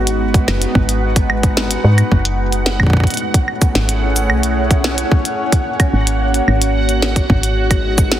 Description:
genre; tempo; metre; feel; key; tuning
IDM; 110 BPM; 4/4; straight; unclear; A4 = 443 Hz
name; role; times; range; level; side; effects
warbly tape-like pad; sustained chords; 0.0-8.2 s; G#3 to C#5; -20 LUFS; equal; chorus, built-in reverb, phaser
woody FM bass; bass; 0.0-8.2 s; F#1 to G#2; -17 LUFS; equal; none
bubbling stepped-filter texture; texture; 0.0-8.2 s; F#5; -24 LUFS; right 2 dB; chorus, built-in reverb
glitchy drum kit; drums; 0.1-8.2 s; claves, hi-hat, shaker, snare drum; -20 LUFS; equal; none
electronic kick drum; drums; 0.3-8.1 s; none; -15 LUFS; equal; none
room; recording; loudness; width
little or no reverb; heavily compressed radio sound; -13 LUFS; side -12 dB against mid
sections
0.0-8.2 A section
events
none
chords
0.0 G#m7; 2.9 Amaj7; 5.1 F#; 7.3 G#m7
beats
0.21 | 0.75 1.30 1.84 2.39 | 2.93 3.48 4.03 4.57 | 5.12 5.66 6.21 6.75 | 7.30 7.84

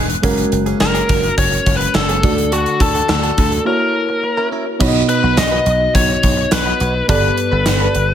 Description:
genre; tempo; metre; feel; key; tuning
1980s-style pop; 105 BPM; 4/4; straight; unclear; A4 = 440 Hz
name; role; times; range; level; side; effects
mellow FM electric piano; accompaniment; 0.0-8.1 s; G2 to D#5; -20 LUFS; right 2 dB; chorus
direct-recorded clean electric guitar; riff; 0.0-8.1 s; A#3 to B4; -27 LUFS; right 3 dB; wide subtle chorus, ping-pong delay
dry thumbed slap bass; bass; 0.0-8.1 s; E1 to D2; -20 LUFS; equal; none
gated 80s drum kit; drums; 0.1-8.1 s; crash cymbal, hi-hat, kick drum, snare drum, tambourine; -18 LUFS; equal; none
biting lead guitar; melody; 0.8-8.1 s; F#4 to D#5; -18 LUFS; left 3 dB; overdrive, ping-pong delay
group handclap; percussion; 0.8-7.8 s; none; barely audible; none; none
room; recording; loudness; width
moderate lush hall reverb, RT60 2.6 s; none; -13 LUFS; side -9 dB against mid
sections
0.0-4.8 A section; 4.8-8.1 B section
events
break 3.7-4.8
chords
0.2 F#add9; 2.2 D; 3.7 F#7; 4.8 B; 7.1 Gadd9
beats
| 0.23 0.81 1.38 1.95 | 2.52 3.09 3.66 4.23 | 4.80 5.38 5.95 6.52 | 7.09 7.66

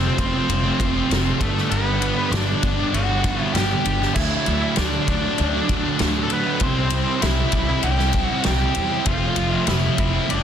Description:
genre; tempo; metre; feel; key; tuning
quiet-loud alternative rock; 98 BPM; 4/4; straight; G major; A4 = 439 Hz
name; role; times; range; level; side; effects
nasal lead guitar with a parked wah; melody; 0.0-10.4 s; A3 to G5; -25 LUFS; equal; overdrive
high-gain distorted guitar; riff; 0.0-10.4 s; F2 to F4; -27 LUFS; left 12 dB; distortion
thick fuzz guitar; riff; 0.0-10.3 s; F2 to E4; -25 LUFS; right 9 dB; distortion
upright bass; bass; 0.0-10.4 s; F1 to E2; -24 LUFS; left 1 dB; none
loose indie drum kit; drums; 0.2-10.4 s; crash cymbal, kick drum, ride cymbal, snare drum; -25 LUFS; left 1 dB; none
room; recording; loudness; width
light reverb; dense, heavily limited modern master; -18 LUFS; side -8 dB against mid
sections
0.0-10.4 A section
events
none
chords
0.0 F; 1.4 G; 4.2 D; 6.6 C; 9.1 F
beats
0.49 1.10 | 1.71 2.32 2.94 3.55 | 4.16 4.77 5.38 5.99 | 6.61 7.22 7.83 8.44 | 9.05 9.67 10.28

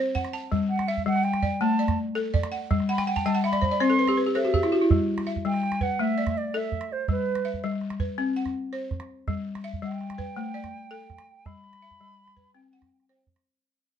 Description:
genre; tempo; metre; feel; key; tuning
west african traditional, West African string and xylophone music; 110 BPM (dotted quarters); 12/8; straight; G major; A4 = 445 Hz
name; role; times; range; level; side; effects
balafon; arpeggios; 0.0-13.5 s; G3 to A5; -26 LUFS; left 2 dB; none
calabash; percussion; 0.2-13.4 s; none; -28 LUFS; right 3 dB; none
hollow concert flute; melody; 0.7-13.2 s; B4 to C6; -29 LUFS; right 4 dB; none
room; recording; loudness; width
moderate studio reverb, RT60 0.7 s; dark, warm production; -24 LUFS; side -9 dB against mid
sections
0.0-4.9 A section; 4.9-13.6 B section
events
flute solo 0.0-4.9; balafon fill 2.9-4.9; fade-out 4.9-13.6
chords
0.0 C5; 0.5 G5; 1.6 Asus4; 2.7 G; 3.8 N.C.; 4.9 G; 6.0 A5; 7.1 G; 8.2 B5; 9.3 G; 10.4 A9sus4; 11.5 G; 12.5 C5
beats
| 0.52 1.07 1.61 2.16 | 2.71 3.25 3.80 4.35 | 4.90 5.45 5.99 6.54 | 7.09 7.63 8.18 8.73 | 9.27 9.82 10.37 10.91 | 11.46 12.00 12.54 13.09

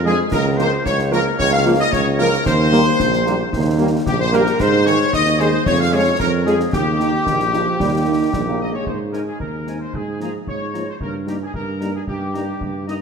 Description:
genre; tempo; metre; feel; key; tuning
military-style march for wind band; 112 BPM; 2/4; straight; unclear; A4 = 438 Hz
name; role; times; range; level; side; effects
warm woodwind section; second line; 0.0-13.0 s; Eb4 to Bb5; -27 LUFS; left 1 dB; none
clear tuba; bass; 0.0-13.0 s; Bb1 to Ab2; -20 LUFS; right 2 dB; none
clear trumpet section; melody; 0.1-12.9 s; G4 to F5; -23 LUFS; left 2 dB; none
bright small flute group; second line; 0.1-8.6 s; G4 to F5; -24 LUFS; left 3 dB; none
dark French horn section; accompaniment; 0.1-13.0 s; F3 to Ab4; -27 LUFS; left 4 dB; none
warm trombone section; sustained chords; 0.1-8.9 s; Eb3 to Bb3; -24 LUFS; right 4 dB; none
concert snare drum, clash cymbals and concert bass drum; drums; 0.3-13.0 s; none; -28 LUFS; left 1 dB; none
room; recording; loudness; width
wet scoring stage reverb, RT60 1.9 s; none; -16 LUFS; side -6 dB against mid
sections
0.0-8.9 A section; 8.9-13.0 B section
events
none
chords
0.3 Bbm/Db; 2.5 Eb; 4.6 Ab5; 5.7 Db/F; 6.7 Eb; 8.9 Ab; 9.9 Bb5/Ab; 11.0 Eb/G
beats
| 0.32 0.85 | 1.39 1.92 | 2.46 2.99 | 3.52 4.06 | 4.59 5.13 | 5.66 6.20 | 6.73 7.26 | 7.80 8.33 | 8.87 9.40 | 9.94 10.47 | 11.00 11.54 | 12.07 12.61

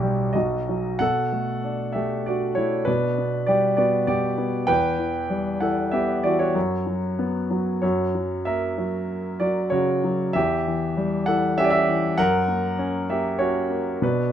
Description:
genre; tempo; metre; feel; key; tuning
classical, lyrical solo piano; 90-101 BPM; 3/4; rubato; unclear; A4 = 439 Hz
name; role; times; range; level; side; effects
warm concert grand piano; solo; 0.0-14.3 s; B1 to G5; -21 LUFS; equal; none
room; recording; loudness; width
moderate studio reverb, RT60 0.5 s; none; -21 LUFS; side -10 dB against mid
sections
0.0-1.0 A section; 1.0-14.3 B section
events
none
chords
0.4 B; 1.0 Bm7; 2.9 G/B; 4.7 Emadd9; 6.6 F#sus4; 7.8 F#; 10.4 C#dim/E; 12.2 F#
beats
0.35 | 1.00 1.63 2.26 | 2.88 3.48 4.08 | 4.68 5.30 5.92 | 6.55 7.19 7.83 | 8.47 9.10 9.73 | 10.35 10.97 11.57 | 12.18 12.79 13.39 | 14.02

